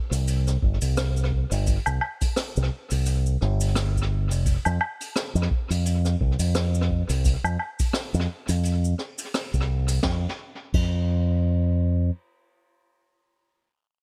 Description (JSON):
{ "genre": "sunset chillout", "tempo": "86 BPM", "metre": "4/4", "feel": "swing 56% on 16ths", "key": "unclear", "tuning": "A4 = 440 Hz", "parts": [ { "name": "fingered electric bass with an envelope filter", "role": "bass", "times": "0.1-12.1 s", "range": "F1 to F2", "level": "-25 LUFS", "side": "equal", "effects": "none" }, { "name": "jazz brush drum kit", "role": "drums", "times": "0.1-11.0 s", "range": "cabasa, crash cymbal, hi-hat, rim click, snare drum, woodblock", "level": "-33 LUFS", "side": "equal", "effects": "tape echo" }, { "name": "electronic kick drum", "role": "drums", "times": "0.6-11.0 s", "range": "none", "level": "-27 LUFS", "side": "equal", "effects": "overdrive" } ], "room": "little or no reverb", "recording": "echo-heavy mix", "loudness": "-25 LUFS", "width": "mono", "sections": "0.0-10.0 A section; 10.0-12.8 B section", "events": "none", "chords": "none" }